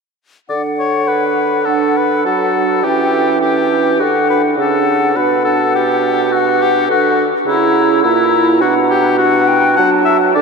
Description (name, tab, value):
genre	quick classical-period movement for symphony orchestra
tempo	104 BPM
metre	4/4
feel	straight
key	D major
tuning	A4 = 441 Hz
part	clear clarinet	second line	0.5-10.4 s	C#4 to E4	-19 LUFS	right 4 dB	none
part	mellow silver concert flute	second line	0.5-10.4 s	F#5 to A#5	-18 LUFS	left 4 dB	none
part	warm oboe	second line	0.5-10.4 s	E4 to F#5	-16 LUFS	left 4 dB	none
part	dark bassoon	accompaniment	0.5-10.4 s	A#2 to F#3	-16 LUFS	right 4 dB	none
room	wet huge ambient reverb, RT60 8.3 s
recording	in a vast, echoing space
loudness	-11 LUFS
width	side -4 dB against mid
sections	0.5-10.4 A section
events	none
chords	0.5 D; 2.8 C#dim/E; 4.0 D; 5.2 Bm; 7.5 A#dim/C#; 8.6 Bm; 9.8 D/F#